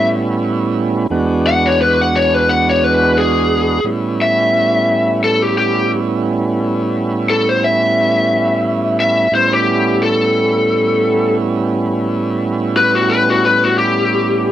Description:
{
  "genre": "blues",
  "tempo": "88 BPM",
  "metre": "4/4",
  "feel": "swing 55% on 16ths",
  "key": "A mixolydian",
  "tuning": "A4 = 440 Hz",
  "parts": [
    { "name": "lead guitar through a small cranked amp", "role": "melody", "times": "0.0-14.5 s", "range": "F#4 to F#5", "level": "-14 LUFS", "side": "left 2 dB", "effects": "overdrive" },
    { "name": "tonewheel organ", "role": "accompaniment", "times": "0.0-14.5 s", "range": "E2 to F#4", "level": "-16 LUFS", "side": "right 2 dB", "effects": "overdrive, slow rotary speaker" }
  ],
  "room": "digital ambience",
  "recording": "dry, close 1970s-style studio recording",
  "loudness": "-12 LUFS",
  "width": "side -12 dB against mid",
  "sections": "0.0-3.8 A section; 3.8-14.5 B section",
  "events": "lead electric guitar solo 0.0-3.8",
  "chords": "0.0 A7; 1.1 E7; 3.8 A7",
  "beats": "0.43 | 1.11 1.79 2.48 3.16 | 3.84 4.53 5.21 5.89 | 6.58 7.26 7.95 8.63 | 9.32 10.00 10.69 11.38 | 12.06 12.74 13.43 14.12"
}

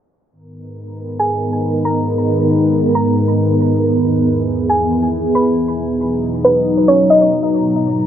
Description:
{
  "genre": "hip hop",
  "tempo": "137 BPM",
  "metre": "4/4",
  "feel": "half-time",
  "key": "G# minor",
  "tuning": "A4 = 440 Hz",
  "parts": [
    { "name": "glassy FM pad", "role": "sustained chords", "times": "0.8-8.1 s", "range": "E2 to A#5", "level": "-15 LUFS", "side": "equal", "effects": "ensemble chorus, built-in reverb, cassette tape" },
    { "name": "soft round pluck", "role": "melody", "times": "1.2-7.3 s", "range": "B4 to B5", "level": "-16 LUFS", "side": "right 1 dB", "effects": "chorus, low-pass filter, tape echo" }
  ],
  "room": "moderate studio reverb, RT60 0.5 s",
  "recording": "home recording on cassette, low-pass filter",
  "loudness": "-13 LUFS",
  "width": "side -10 dB against mid",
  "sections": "0.3-8.1 A section",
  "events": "none",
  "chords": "0.3 G#madd9; 3.8 E; 5.6 Bmaj7; 7.3 G#madd9",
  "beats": "| 0.31 0.75 1.19 1.63 | 2.07 2.50 2.94 3.38 | 3.82 4.26 4.69 5.13 | 5.57 6.01 6.45 6.88 | 7.32 7.76"
}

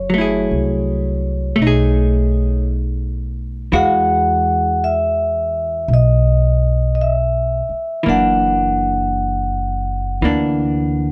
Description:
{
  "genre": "jazz ballad",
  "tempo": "56 BPM",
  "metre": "4/4",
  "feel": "swing 66% on 8ths",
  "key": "unclear",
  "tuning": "A4 = 440 Hz",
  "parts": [
    { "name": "vibraphone with medium mallets", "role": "melody", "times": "0.0-11.1 s", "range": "Db5 to F#5", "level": "-22 LUFS", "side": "equal", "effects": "none" },
    { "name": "upright bass", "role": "bass", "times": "0.0-11.1 s", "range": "Gb1 to E2", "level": "-21 LUFS", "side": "equal", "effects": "none" },
    { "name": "vintage hollow-body jazz guitar", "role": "accompaniment", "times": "0.1-11.1 s", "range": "E3 to Ab4", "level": "-22 LUFS", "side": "equal", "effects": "none" }
  ],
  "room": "light reverb",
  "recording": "dark, warm production",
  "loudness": "-17 LUFS",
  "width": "mono",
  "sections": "0.0-11.1 A section",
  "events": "none",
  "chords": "0.0 Gbm9; 1.6 B13; 3.7 Emaj9; 8.0 Gbaug7",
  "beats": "0.50 1.58 2.65 | 3.73 4.80 5.88 6.96 | 8.04 9.12 10.21"
}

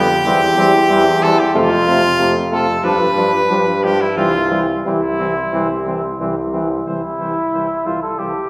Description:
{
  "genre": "classical, brass quintet",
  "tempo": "91 BPM",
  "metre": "4/4",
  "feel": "straight",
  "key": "C major",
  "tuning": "A4 = 440 Hz",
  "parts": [
    { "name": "clear trumpet", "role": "melody", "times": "0.0-8.3 s", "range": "E4 to C5", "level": "-20 LUFS", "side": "equal", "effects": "none" },
    { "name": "warm flugelhorn", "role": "second line", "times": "0.0-8.5 s", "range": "C4 to A4", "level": "-25 LUFS", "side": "equal", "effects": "none" },
    { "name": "clear trombone", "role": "accompaniment", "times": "0.0-8.3 s", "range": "C3 to F3", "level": "-24 LUFS", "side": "equal", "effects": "none" },
    { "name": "warm French horn", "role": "accompaniment", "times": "0.0-8.3 s", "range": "G3 to A3", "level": "-25 LUFS", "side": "equal", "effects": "none" },
    { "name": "clear bass trombone", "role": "bass", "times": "0.0-8.3 s", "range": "C2 to G2", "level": "-23 LUFS", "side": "equal", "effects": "none" }
  ],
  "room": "wet concert hall reverb, RT60 1.8 s",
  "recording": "heard from further back in the room",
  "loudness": "-16 LUFS",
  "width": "mono",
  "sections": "0.0-6.9 A section; 6.9-8.5 A section",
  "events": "none",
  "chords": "0.3 C/E; 1.6 F; 2.8 G7; 4.2 C",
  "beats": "0.26 0.90 | 1.55 2.20 2.84 3.50 | 4.18 4.86 5.54 6.21 | 6.88 7.53 8.19"
}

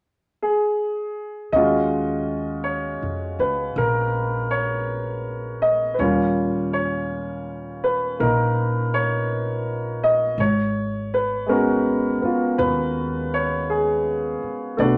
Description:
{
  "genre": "jazz ballad",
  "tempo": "54 BPM",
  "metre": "4/4",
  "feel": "swing 67% on 8ths",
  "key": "Eb minor",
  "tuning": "A4 = 444 Hz",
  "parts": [
    { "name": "clear concert grand piano", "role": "accompaniment", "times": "0.4-15.0 s", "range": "Bb2 to Eb5", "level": "-23 LUFS", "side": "equal", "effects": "none" },
    { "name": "upright bass", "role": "bass", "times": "1.5-15.0 s", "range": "Ab1 to F2", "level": "-30 LUFS", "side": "equal", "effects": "none" }
  ],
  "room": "wet studio ambience, RT60 0.5 s",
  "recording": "none",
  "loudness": "-23 LUFS",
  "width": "mono",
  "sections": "0.0-1.5 A section; 1.5-15.0 B section",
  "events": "none",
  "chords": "0.0 N.C.; 1.5 Ebm11; 6.0 Eb7; 10.4 Abm11",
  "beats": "0.44 | 1.54 2.66 3.78 4.89 | 5.99 7.10 8.20 9.29 | 10.39 11.49 12.59 13.69 | 14.79"
}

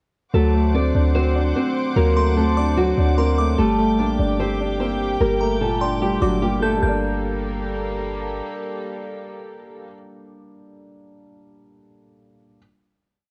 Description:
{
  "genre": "hip hop",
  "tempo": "148 BPM",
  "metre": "4/4",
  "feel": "half-time",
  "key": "G harmonic minor",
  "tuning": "A4 = 440 Hz",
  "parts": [
    { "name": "nylon-string guitar", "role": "melody", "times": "0.3-8.0 s", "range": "F#3 to D5", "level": "-25 LUFS", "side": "equal", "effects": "low-pass filter, cassette tape" },
    { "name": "dark concert grand piano", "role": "accompaniment", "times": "0.3-12.6 s", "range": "Bb2 to A4", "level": "-27 LUFS", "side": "equal", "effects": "low-pass filter, cassette tape" },
    { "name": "warm studio string section", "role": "sustained chords", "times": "0.3-9.9 s", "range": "G3 to D6", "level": "-32 LUFS", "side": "equal", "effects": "cassette tape" },
    { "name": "clean 808-style bass", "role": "bass", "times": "0.3-8.4 s", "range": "G1 to D2", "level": "-24 LUFS", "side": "equal", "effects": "none" },
    { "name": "delicate synth tine bell", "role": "second line", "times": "2.2-8.0 s", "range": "Bb5 to G6", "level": "-32 LUFS", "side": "equal", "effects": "chorus, cassette tape, analog delay" }
  ],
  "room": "light reverb",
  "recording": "home recording on cassette",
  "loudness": "-20 LUFS",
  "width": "mono",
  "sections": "0.3-6.8 hook; 6.8-10.1 final chord",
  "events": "none",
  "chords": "0.3 D7; 3.6 Gmadd9",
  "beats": "| 0.34 0.75 1.15 1.56 | 1.96 2.37 2.77 3.18 | 3.58 3.99 4.39 4.80 | 5.21 5.61 6.02 6.42 | 6.83 7.23 7.64 8.04 | 8.45 8.85 9.26 9.66"
}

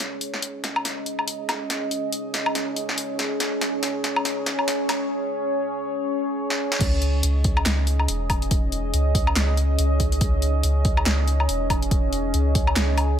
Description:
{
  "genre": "deep dubstep",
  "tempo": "141 BPM",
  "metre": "4/4",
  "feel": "swing 58% on 16ths, half-time",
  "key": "C# minor",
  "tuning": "A4 = 442 Hz",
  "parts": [
    { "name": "deep dark ambient pad", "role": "sustained chords", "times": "0.0-13.2 s", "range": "C#4 to D#5", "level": "-26 LUFS", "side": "right 1 dB", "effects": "chorus, built-in reverb" },
    { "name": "deep house drum kit", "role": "drums", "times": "0.0-13.1 s", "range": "crash cymbal, handclaps, hi-hat, snare drum, woodblock", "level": "-25 LUFS", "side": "left 1 dB", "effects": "overdrive, high-pass filter on hats, high-pass filter on perc, high-pass filter on snare, high-pass filter on cymbals, high-pass filter on room" },
    { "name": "soft dub sub bass", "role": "bass", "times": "6.8-13.2 s", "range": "E1 to C#2", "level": "-22 LUFS", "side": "equal", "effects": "none" },
    { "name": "electronic kick drum", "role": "drums", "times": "6.8-12.7 s", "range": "none", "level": "-22 LUFS", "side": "equal", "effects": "overdrive" }
  ],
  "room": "light reverb, digital ambience",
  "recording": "none",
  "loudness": "-21 LUFS",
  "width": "side -9 dB against mid",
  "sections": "0.0-6.8 A section; 6.8-13.2 B section",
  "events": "build-up 0.0-6.8; drum fill 0.0-5.1, 6.5-6.8; drop 6.8-13.2",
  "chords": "0.0 C#sus2; 6.8 C#madd9",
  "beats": "| 0.00 0.42 0.85 1.27 | 1.70 2.12 2.55 2.98 | 3.40 3.83 4.25 4.68 | 5.10 5.53 5.96 6.38 | 6.81 7.23 7.66 8.08 | 8.51 8.93 9.36 9.79 | 10.21 10.64 11.06 11.49 | 11.91 12.34 12.76 13.19"
}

